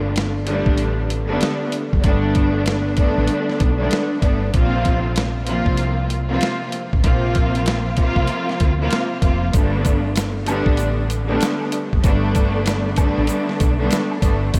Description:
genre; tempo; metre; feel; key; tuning
hip hop, boom-bap hip-hop; 96 BPM; 4/4; swing 62% on 16ths; G major; A4 = 441 Hz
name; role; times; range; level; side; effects
dark studio string section; accompaniment; 0.0-14.6 s; C3 to F4; -23 LUFS; equal; high-pass filter, low-pass filter
woody fretless electric bass; bass; 0.0-14.6 s; F1 to D2; -24 LUFS; equal; none
boom bap sampler-style drum kit; drums; 0.2-14.6 s; hi-hat, kick drum, snare drum; -23 LUFS; equal; none
egg shaker and woodblock; percussion; 9.5-14.6 s; none; -36 LUFS; equal; none
room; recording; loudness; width
moderate huge ambient reverb, RT60 8.2 s; dreamy mix soaked in reverb; -19 LUFS; mono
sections
0.0-14.6 A section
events
none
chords
0.0 Gadd9; 4.5 Bbsus2; 9.5 Gadd9

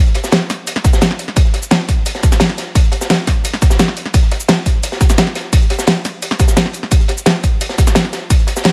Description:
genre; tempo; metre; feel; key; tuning
drum and bass; 173 BPM; 4/4; straight; none; none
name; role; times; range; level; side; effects
crunchy breakbeat drum kit; drums; 0.1-8.7 s; hi-hat, snare drum; -22 LUFS; equal; high-pass filter on hats, high-pass filter on snare, high-pass filter on room, tape echo
pop drum kit; drums; 0.2-8.7 s; hi-hat, ride cymbal, shaker, snare drum; -19 LUFS; equal; none
electronic kick drum; drums; 0.8-8.4 s; none; -14 LUFS; equal; none
room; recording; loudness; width
small room ambience; echo-heavy mix; -14 LUFS; mono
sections
0.0-8.7 A section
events
none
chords
none

